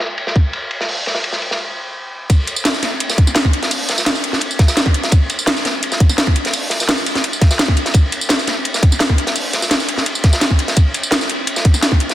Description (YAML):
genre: drum and bass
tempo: 170 BPM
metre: 4/4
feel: straight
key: none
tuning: none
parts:
  - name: crunchy breakbeat drum kit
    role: drums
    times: 0.0-12.1 s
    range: hi-hat, ride cymbal, snare drum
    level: -20 LUFS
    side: equal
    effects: high-pass filter on cymbals, low-pass filter on cymbals, high-pass filter on hats, low-pass filter on hats, high-pass filter on snare, low-pass filter on snare, high-pass filter on room, low-pass filter on room
  - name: electronic kick drum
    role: drums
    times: 0.4-12.0 s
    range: none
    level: -12 LUFS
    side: equal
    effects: none
  - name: drum and bass drum kit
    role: drums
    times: 2.3-12.1 s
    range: hi-hat, snare drum, tambourine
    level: -17 LUFS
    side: equal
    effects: none
room: light reverb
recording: dense, heavily limited modern master, low-pass filter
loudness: -14 LUFS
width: side -13 dB against mid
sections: 0.0-2.3 A section; 2.3-12.1 B section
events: filter sweep 0.0-2.3; stop 1.6-2.3; drop 2.3-12.1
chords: none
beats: 0.18 0.53 | 0.89 1.24 1.59 1.95 | 2.30 2.65 3.00 3.36 | 3.71 4.06 4.42 4.77 | 5.12 5.47 5.83 6.18 | 6.53 6.89 7.24 7.59 | 7.95 8.30 8.65 9.00 | 9.36 9.71 10.06 10.42 | 10.77 11.12 11.47 11.83